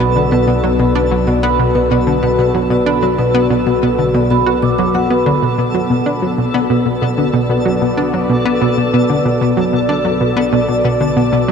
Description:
ambient, sequencer-driven space music; 94 BPM; 4/4; straight; B minor; A4 = 440 Hz
sweeping resonant pad; sustained chords; 0.0-11.5 s; B3 to C#6; -18 LUFS; left 1 dB; chorus, shimmer reverb
vibraphone with soft mallets; arpeggios; 0.0-5.4 s; B4 to D6; -20 LUFS; moving between left 1 dB and right 5 dB; auto-pan, ping-pong delay, shimmer reverb
analog pluck; riff; 0.0-11.5 s; B2 to F#4; -15 LUFS; equal; chorus, ping-pong delay, shimmer reverb
fat analog bass; bass; 0.0-11.5 s; B1; -24 LUFS; equal
twinkling granular texture; texture; 0.0-11.5 s; A4; -24 LUFS; equal; built-in reverb, shimmer reverb
wet cathedral reverb, RT60 6.8 s; in a vast, echoing space; -12 LUFS; side -6 dB against mid
0.0-5.4 A section; 5.4-11.5 B section
0.0 Bm

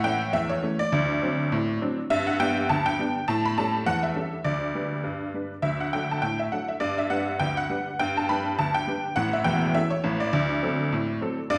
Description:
ragtime piano; 102 BPM; 2/4; swing 56% on 16ths; G major; A4 = 440 Hz
honky-tonk upright piano; solo; 0.0-11.6 s; E1 to B5; -26 LUFS; equal
wet recital hall reverb, RT60 1.7 s; recorded in a church or concert hall; -26 LUFS; mono
0.0-11.6 A section
0.0 A; 0.9 D7; 2.1 G; 3.3 A7; 4.4 G/D; 5.6 D; 6.8 G; 9.2 A; 10.3 D7

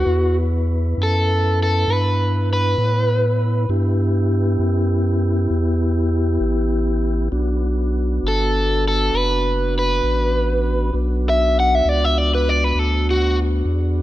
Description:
slow blues; 66 BPM (dotted quarters); 12/8; straight; B minor; A4 = 440 Hz
crunchy overdriven guitar; melody; 0.0-13.4 s; F#4 to F#5; -20 LUFS; equal; spring reverb
mellow tonewheel organ; sustained chords; 0.0-14.0 s; B3 to B4; -24 LUFS; equal; slow rotary speaker
round analog bass; bass; 0.0-14.0 s; F#1 to A2; -19 LUFS; equal
digital ambience; rough home demo mix; -16 LUFS; side -14 dB against mid
0.0-14.0 A section
overdriven electric guitar solo 0.0-14.0
0.1 Em; 7.3 Bm

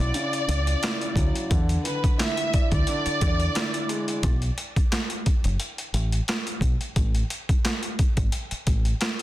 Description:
hip hop, boom-bap hip-hop; 88 BPM; 4/4; swing 56% on 16ths; B dorian; A4 = 439 Hz
warm symphonic violin section; melody; 0.0-4.2 s; B4 to E5; -29 LUFS; equal; high-pass filter, low-pass filter, tape echo
dark upright piano; accompaniment; 0.0-4.3 s; C#3 to D5; -31 LUFS; equal; cassette tape, high-pass filter, low-pass filter
deep dub fingered electric bass; bass; 0.0-8.9 s; F#1 to E2; -24 LUFS; equal
boom bap sampler-style drum kit; drums; 0.1-9.2 s; handclaps, hi-hat, kick drum, snare drum; -24 LUFS; equal; overdrive
light reverb; dense, heavily limited modern master; -22 LUFS; side -15 dB against mid
0.0-9.2 A section
0.0 Dmaj9; 1.5 E7; 4.2 B5; 7.0 N.C.

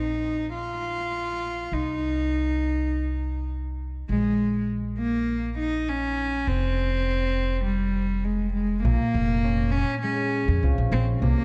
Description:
folktronica; 101 BPM; 4/4; straight; Bb dorian; A4 = 438 Hz
rich cello; melody; 0.0-11.4 s; G3 to F4; -29 LUFS; equal
upright bass; bass; 0.0-11.3 s; F1 to F2; -29 LUFS; equal
concert harp; arpeggios; 8.8-11.4 s; Bb2 to F4; -30 LUFS; equal
light reverb, studio reverb; dark, warm production; -26 LUFS; mono
0.0-8.8 A section; 8.8-11.4 B section
0.0 Bb5; 1.7 Cm; 4.1 Bbm7; 6.5 F5; 8.8 Bbm9

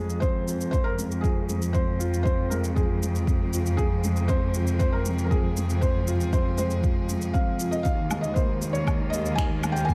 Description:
piano and strings electronica; 118 BPM; 4/4; straight; F minor; A4 = 440 Hz
felt-muted upright piano; melody; 0.0-9.9 s; Ab4 to Ab5; -34 LUFS; equal
bright string quartet; sustained chords; 0.0-9.9 s; C3 to G5; -43 LUFS; equal; sidechain pumping
dark baby grand piano; riff; 0.0-9.9 s; Eb3 to F4; -33 LUFS; equal
warm studio cello section; bass; 0.0-9.9 s; Eb2 to F2; -30 LUFS; equal; sidechain pumping
electronic shaker, woodblock and finger snaps; drums; 0.1-9.9 s; -38 LUFS; equal
electronic kick drum; drums; 0.2-9.9 s; -28 LUFS; equal
light reverb, small room ambience; -25 LUFS; mono
0.0-9.9 A section
fade-in on string quartet 0.0-9.9
0.0 Fm; 7.9 Ebsus4

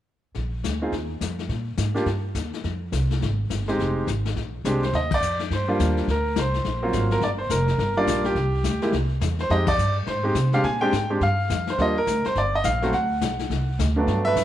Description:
jazz piano trio; 210 BPM; 4/4; swing 62% on 8ths; Eb major; A4 = 439 Hz
vintage brush drum kit; drums; 0.3-14.4 s; brushed snare drum, hi-hat, kick drum, ride cymbal, snare drum; -30 LUFS; left 8 dB
upright bass; bass; 0.4-14.4 s; F1 to C3; -25 LUFS; equal
clear baby grand piano; melody; 0.8-14.4 s; G2 to Ab5; -23 LUFS; right 1 dB
moderate plate reverb, RT60 1.3 s, small room ambience; 1960s-style stereo; -21 LUFS; side -12 dB against mid
0.4-4.9 A section; 4.9-14.1 B section
band accent 5.1, 9.6
0.4 Bbsus4; 1.5 Eb; 2.6 Fm7; 4.4 Bb13; 4.9 Ebmaj7; 6.1 D7alt; 7.2 Gm7; 8.4 C; 9.5 Fm7; 10.6 Bb7sus2; 11.8 Ebmaj7; 12.9 D7

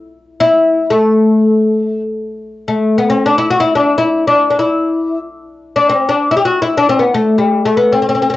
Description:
Arabic maqam ensemble; free time; A maqam rast; A4 = 436 Hz
oud; solo; 0.4-8.4 s; G#3-50c to G#4-50c; -11 LUFS; left 2 dB; cassette tape
wet studio ambience, RT60 0.5 s; home recording on cassette, nothing above 7.9 kHz, faint mains hum; -11 LUFS; side -15 dB against mid
0.0-2.3 A section; 2.3-8.4 A section

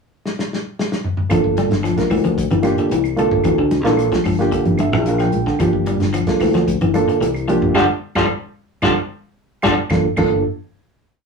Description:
afrobeat; 112 BPM; 4/4; straight; G dorian; A4 = 440 Hz
warm soul drum kit; drums; 0.3-10.3 s; crash cymbal, hi-hat, kick drum, snare drum, toms; -25 LUFS; left 1 dB
barky reed electric piano; accompaniment; 1.3-10.4 s; Bb3 to G5; -18 LUFS; right 4 dB
electric guitar at the edge of break-up; arpeggios; 1.3-10.3 s; G2 to G3; -21 LUFS; left 3 dB
fingered electric bass; bass; 1.3-10.4 s; G1 to D2; -20 LUFS; left 1 dB
claves; percussion; 1.3-10.3 s; -32 LUFS; right 2 dB
congas; percussion; 1.3-10.3 s; -24 LUFS; equal
moderate booth ambience, RT60 0.2 s; rough rehearsal-room recording, studio ambience; -15 LUFS; side -5 dB against mid
0.0-1.3 pickup bar; 1.3-9.9 groove; 9.9-11.3 final chord
drum fill 0.2-1.3, 9.1-9.9; reed electric piano fill 4.5-5.6, 9.1-9.9; band accent 7.7-9.9
0.0 N.C.; 1.3 Gm7

